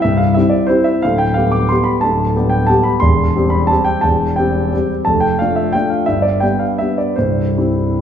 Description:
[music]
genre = classical, piano waltz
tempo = 142-190 BPM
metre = 3/4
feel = rubato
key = C major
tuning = A4 = 440 Hz
[part]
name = warm concert grand piano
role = solo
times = 0.0-8.0 s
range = C1 to D6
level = -13 LUFS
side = equal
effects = none
[sound]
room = wet scoring stage reverb, RT60 1.6 s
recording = heard from further back in the room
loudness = -13 LUFS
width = side -8 dB against mid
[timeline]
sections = 0.0-8.0 A section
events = none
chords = 0.0 C; 1.0 G/D; 3.0 C/E; 5.1 Dm/F; 6.1 G; 7.2 C

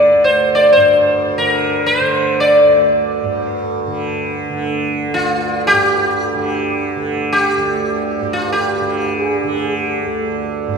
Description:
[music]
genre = indian classical, Hindustani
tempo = free time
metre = none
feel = none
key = unclear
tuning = A4 = 440 Hz
[part]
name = sitar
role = melody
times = 0.0-10.5 s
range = F4 to D5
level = -14 LUFS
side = equal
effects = none
[part]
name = tanpura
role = drone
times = 0.0-10.8 s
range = D2 to D3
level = -20 LUFS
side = right 2 dB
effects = none
[sound]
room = wet church reverb, RT60 3.3 s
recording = recorded in a church or concert hall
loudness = -13 LUFS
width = side -5 dB against mid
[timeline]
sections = 0.0-10.8 A section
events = none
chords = none

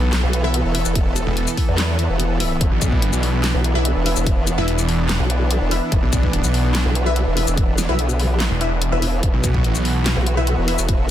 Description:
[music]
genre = heavy wobble dubstep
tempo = 145 BPM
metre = 4/4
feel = half-time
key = unclear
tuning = A4 = 440 Hz
[part]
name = supersaw pad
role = sustained chords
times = 0.0-11.1 s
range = E3 to A4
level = -24 LUFS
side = right 1 dB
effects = sidechain pumping
[part]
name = snarling distorted saw bass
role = bass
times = 0.0-10.1 s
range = E1 to B1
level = -19 LUFS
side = equal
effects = distortion, overdrive
[part]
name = dubstep drum kit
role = drums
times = 0.1-11.0 s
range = handclaps, hi-hat, shaker, snare drum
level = -25 LUFS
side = left 2 dB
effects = none
[part]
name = formant-sweep wobble bass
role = bass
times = 0.2-11.1 s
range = E1 to E2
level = -20 LUFS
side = equal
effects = chorus, overdrive
[part]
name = orchestra-hit-like synth stab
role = stabs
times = 0.4-10.8 s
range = E4 to E5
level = -26 LUFS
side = left 3 dB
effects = built-in reverb, dub echo
[part]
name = electronic kick drum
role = drums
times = 1.0-11.0 s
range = none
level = -19 LUFS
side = equal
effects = none
[sound]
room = little or no reverb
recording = dense, heavily limited modern master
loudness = -16 LUFS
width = side -11 dB against mid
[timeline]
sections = 0.0-11.1 A section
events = none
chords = 0.0 E5

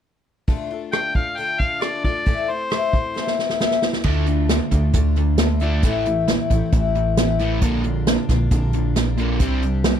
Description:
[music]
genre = folk rock and heartland rock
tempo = 134 BPM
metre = 4/4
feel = straight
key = D minor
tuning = A4 = 440 Hz
[part]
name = picked twelve-string acoustic guitar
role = accompaniment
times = 0.5-10.0 s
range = A2 to G4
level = -26 LUFS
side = left 8 dB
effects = none
[part]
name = unplugged drum kit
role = drums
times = 0.5-10.0 s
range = crash cymbal, hi-hat, kick drum, rim click, snare drum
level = -21 LUFS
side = right 1 dB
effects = none
[part]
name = warm harmonica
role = melody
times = 0.9-3.4 s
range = C5 to G5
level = -24 LUFS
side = left 2 dB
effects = slapback echo
[part]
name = overdriven semi-hollow guitar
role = riff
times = 4.0-10.0 s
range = A2 to D4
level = -23 LUFS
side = right 2 dB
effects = none
[part]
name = hollow-body short-scale fingered electric bass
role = bass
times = 4.0-9.9 s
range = A1 to D2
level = -21 LUFS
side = equal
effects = none
[sound]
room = little or no reverb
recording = none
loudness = -18 LUFS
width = side -9 dB against mid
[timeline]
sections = 0.5-4.1 A section; 4.1-10.0 B section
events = drum fill 3.2-4.1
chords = 0.5 Dm; 2.3 Am; 4.1 Dm; 5.8 Am; 7.6 Bb; 9.4 Csus2

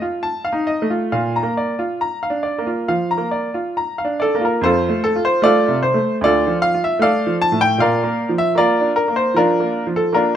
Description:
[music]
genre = classical, baroque-style suite movement for grand piano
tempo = 67-78 BPM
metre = 4/4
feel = rubato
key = Bb major, F major from 4.6 s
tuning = A4 = 439 Hz
[part]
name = bright baby grand piano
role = solo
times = 0.0-10.4 s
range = D2 to Bb5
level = -16 LUFS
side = equal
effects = none
[sound]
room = light reverb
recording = close, detailed microphones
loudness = -16 LUFS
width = side -10 dB against mid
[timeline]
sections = 0.0-4.6 A section; 4.6-10.4 A section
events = none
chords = 0.0 F7; 1.1 Bb; 4.6 F; 6.2 Dm; 7.8 Bb

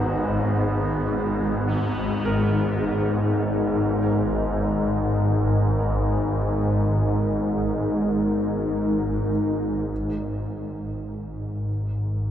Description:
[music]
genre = dark ambient drone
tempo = free time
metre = none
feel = none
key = G# minor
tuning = A4 = 440 Hz
[part]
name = bright baby grand piano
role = arpeggios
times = 0.0-9.9 s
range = C#2 to A#4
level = -36 LUFS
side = right 1 dB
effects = tape echo
[part]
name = swarming drone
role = drone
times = 0.0-12.3 s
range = G#1 to G#2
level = -23 LUFS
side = equal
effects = built-in reverb, phaser
[part]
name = bubbling stepped-filter texture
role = texture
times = 0.0-9.9 s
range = B3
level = -35 LUFS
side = right 3 dB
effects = chorus, built-in reverb
[part]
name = deep dark ambient pad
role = sustained chords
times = 1.8-12.3 s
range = G#3 to A#4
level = -27 LUFS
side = left 1 dB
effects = chorus, built-in reverb
[sound]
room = wet huge ambient reverb, RT60 8.2 s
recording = in a vast, echoing space, cassette tape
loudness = -21 LUFS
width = side -10 dB against mid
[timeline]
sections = 0.0-9.9 A section; 9.9-12.3 B section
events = fade-in on grand piano 0.0-9.9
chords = 0.0 G#m; 9.9 G#5

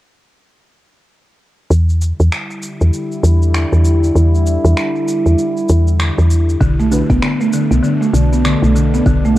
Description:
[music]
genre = organic downtempo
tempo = 98 BPM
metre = 4/4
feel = swing 60% on 16ths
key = E minor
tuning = A4 = 440 Hz
[part]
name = warbly tape-like pad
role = sustained chords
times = 2.4-9.4 s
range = B2 to E4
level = -20 LUFS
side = equal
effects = chorus, built-in reverb, sidechain pumping, cassette tape
[part]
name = woody FM bass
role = bass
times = 1.7-9.4 s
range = B1 to E2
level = -12 LUFS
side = equal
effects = sidechain pumping
[part]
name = electronic shaker and finger snaps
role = drums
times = 1.7-9.3 s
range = none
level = -25 LUFS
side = equal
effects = overdrive
[part]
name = buzzing marimba with soft mallets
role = arpeggios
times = 6.6-9.4 s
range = D3 to B3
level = -14 LUFS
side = equal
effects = cassette tape, analog delay
[part]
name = electronic kick drum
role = drums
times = 6.6-9.2 s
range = none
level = -16 LUFS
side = equal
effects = overdrive
[part]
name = muted felt-like synth keys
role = accompaniment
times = 6.9-9.4 s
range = A3 to B4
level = -21 LUFS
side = equal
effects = chorus, sidechain pumping, cassette tape, analog delay
[sound]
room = light reverb, digital ambience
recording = home recording on cassette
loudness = -12 LUFS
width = side -15 dB against mid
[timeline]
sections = 1.7-9.4 A section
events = filter sweep on FM bass 1.7-9.4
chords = 1.7 Em7; 6.6 Bm7

